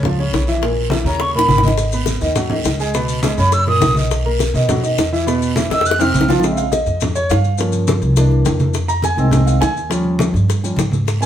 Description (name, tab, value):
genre	Afro-Cuban jazz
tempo	207 BPM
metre	4/4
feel	straight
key	Bb minor from 6.4 s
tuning	A4 = 444 Hz
part	warm concert grand piano	accompaniment	0.0-11.3 s	Bb2 to Cb6	-19 LUFS	right 1 dB	none
part	upright bass	bass	0.0-11.3 s	Ab1 to B2	-18 LUFS	equal	none
part	congas	percussion	0.0-11.3 s	none	-22 LUFS	equal	none
part	guiro	percussion	0.0-6.4, 11.1-11.3 s	none	-30 LUFS	right 4 dB	none
part	bongos	percussion	0.1-11.3 s	none	-23 LUFS	left 4 dB	none
part	breathy mellow silver concert flute	melody	1.1-6.3 s	Bb5 to Gb6	-17 LUFS	right 2 dB	none
part	maracas	percussion	1.8-11.3 s	none	-30 LUFS	left 6 dB	none
room	moderate studio reverb, RT60 0.7 s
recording	band playing live in one room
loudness	-14 LUFS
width	side -10 dB against mid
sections	0.0-6.4 A section; 6.4-11.3 A section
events	flute solo 0.0-6.4; drum fill 1.2-1.8, 5.7-6.4; grand piano solo 6.4-11.3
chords	0.0 Gbmaj7 (rootless); 0.6 Bbdim; 1.2 Eb5; 1.8 Abm7; 2.9 Db5; 3.5 Gb; 4.1 Bmaj7; 5.3 E5; 5.8 F5; 6.4 Bbm9; 7.6 Gm7b5; 8.2 C7; 8.8 Fm7; 9.9 Eb7